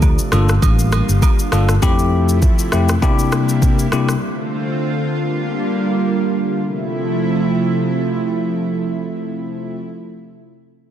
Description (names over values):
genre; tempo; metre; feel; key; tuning
afrobeats; 100 BPM; 4/4; swing 55% on 16ths; F major; A4 = 441 Hz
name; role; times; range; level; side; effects
lush unison pad; sustained chords; 0.0-9.8 s; C3 to F4; -20 LUFS; right 2 dB; chorus
fingered electric bass; bass; 0.0-1.8 s; G1 to D2; -15 LUFS; equal; none
afro-pop drum kit; drums; 0.0-4.2 s; kick drum, rim click, shaker; -17 LUFS; equal; soft clipping on snare
woodblock and agogo bells; percussion; 0.0-1.7 s; none; -28 LUFS; right 9 dB; none
bell-like tine electric piano; accompaniment; 0.3-4.1 s; F2 to A4; -18 LUFS; left 3 dB; phaser
room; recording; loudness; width
light reverb, digital ambience; dense, heavily limited modern master; -15 LUFS; side -10 dB against mid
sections
0.0-6.6 A section; 6.6-9.0 B section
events
none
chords
0.3 Gm7; 1.8 Fmaj7; 3.0 C7; 4.2 Dm7; 5.1 Gm7; 6.6 Fmaj7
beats
0.02 0.62 1.22 | 1.82 2.42 3.02 3.62 | 4.22 4.82 5.42 6.02 | 6.62 7.22 7.82 8.42